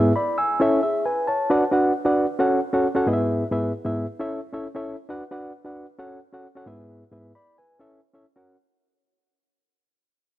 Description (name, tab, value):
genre	soul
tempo	133 BPM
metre	4/4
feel	straight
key	B dorian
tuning	A4 = 440 Hz
part	reed electric piano	solo	0.0-8.6 s	G#2 to E6	-21 LUFS	equal	overdrive
room	light reverb, digital ambience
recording	none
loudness	-20 LUFS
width	side -14 dB against mid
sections	0.0-8.7 A section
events	fade-out 0.0-8.7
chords	0.0 E/G#; 0.6 A; 1.5 Bm; 2.4 F#m; 3.1 E/G#; 4.2 A; 5.1 Bm; 6.0 F#m; 6.7 E/G#; 7.8 A; 8.2 F#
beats	0.14 0.59 1.04 | 1.50 1.95 2.40 2.84 | 3.29 3.74 4.19 4.64 | 5.09 5.54 5.99 6.44 | 6.89 7.34 7.79 8.24